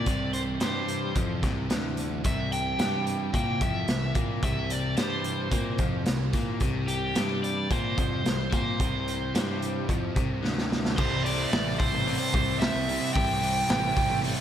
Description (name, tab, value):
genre	indie rock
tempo	110 BPM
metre	4/4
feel	straight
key	C major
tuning	A4 = 440 Hz
part	crunchy overdriven guitar	melody	0.0-14.2 s	G4 to G5	-31 LUFS	right 1 dB	spring reverb, slapback echo, digital delay
part	overdriven electric guitar	riff	0.0-14.4 s	C3 to E4	-34 LUFS	left 8 dB	none
part	thick fuzz guitar	riff	0.0-14.4 s	C3 to E4	-34 LUFS	right 7 dB	distortion, lush chorus, slapback echo, digital delay
part	modern bright picked electric bass	bass	0.0-14.3 s	A1 to Bb2	-34 LUFS	equal	none
part	raw garage drum kit	drums	0.1-14.4 s	crash cymbal, hi-hat, kick drum, snare drum	-28 LUFS	equal	none
part	combo organ	sustained chords	11.0-14.4 s	G4 to A5	-41 LUFS	equal	none
room	moderate lush hall reverb, RT60 1.7 s, small room ambience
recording	big arena sound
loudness	-25 LUFS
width	side -10 dB against mid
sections	0.0-11.0 A section; 11.0-14.4 B section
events	drum fill 10.4-11.0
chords	0.0 C; 11.0 C6